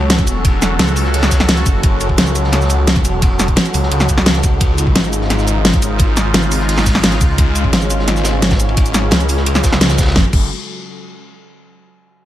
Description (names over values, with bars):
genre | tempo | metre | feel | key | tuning
dark technical drum and bass | 173 BPM | 4/4 | straight | unclear | A4 = 438 Hz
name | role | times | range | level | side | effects
sweeping resonant pad | sustained chords | 0.0-10.3 s | C#3 to A4 | -22 LUFS | equal | chorus, sidechain pumping
phased detuned saw bass | bass | 0.0-10.5 s | E1 to C#2 | -16 LUFS | equal | phaser, tube saturation
crunchy breakbeat drum kit | drums | 0.1-10.2 s | hi-hat, ride cymbal, snare drum | -26 LUFS | equal | high-pass filter on cymbals, high-pass filter on hats, high-pass filter on snare, high-pass filter on room
dubstep drum kit | drums | 0.1-10.4 s | crash cymbal, hi-hat, shaker, snare drum | -16 LUFS | equal | none
electronic kick drum | drums | 0.2-10.4 s | none | -15 LUFS | equal | none
room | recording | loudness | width
small room ambience | lossy compression artefacts | -11 LUFS | side -13 dB against mid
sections
0.0-10.2 A section; 10.2-11.5 B section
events
drop 0.0-10.2; band accent 9.8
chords
0.0 F#m; 4.6 C#add9; 10.2 N.C.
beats
0.10 | 0.45 0.79 1.14 1.49 | 1.83 2.18 2.53 2.88 | 3.22 3.57 3.92 4.26 | 4.61 4.96 5.30 5.65 | 6.00 6.34 6.69 7.04 | 7.38 7.73 8.08 8.42 | 8.77 9.12 9.46 9.81 | 10.16